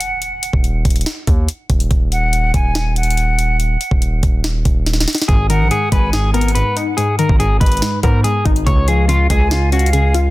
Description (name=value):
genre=hip hop, trap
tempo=142 BPM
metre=4/4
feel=half-time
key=Eb minor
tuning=A4 = 440 Hz
part: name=silver concert flute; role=second line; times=0.0-10.3 s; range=F5 to Ab5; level=-22 LUFS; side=equal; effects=digital delay
part: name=trap drum kit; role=drums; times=0.0-10.2 s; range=hi-hat, kick drum, snare drum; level=-16 LUFS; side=equal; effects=none
part: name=distorted 808-style bass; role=bass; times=0.5-10.3 s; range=Eb1 to Ab2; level=-16 LUFS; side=equal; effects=distortion
part: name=electric guitar at the edge of break-up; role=melody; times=5.3-10.1 s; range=F4 to Db5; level=-19 LUFS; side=left 1 dB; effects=low-pass filter
part: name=warbly dusty pluck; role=accompaniment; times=5.3-10.3 s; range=Ab2 to F4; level=-19 LUFS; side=left 2 dB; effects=chorus, low-pass filter
room=little or no reverb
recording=dense, heavily limited modern master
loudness=-13 LUFS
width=side -18 dB against mid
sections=0.0-10.3 A section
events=break 0.0-5.3; drum fill 4.9-5.3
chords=0.0 Ebm; 5.3 Abm; 8.7 Db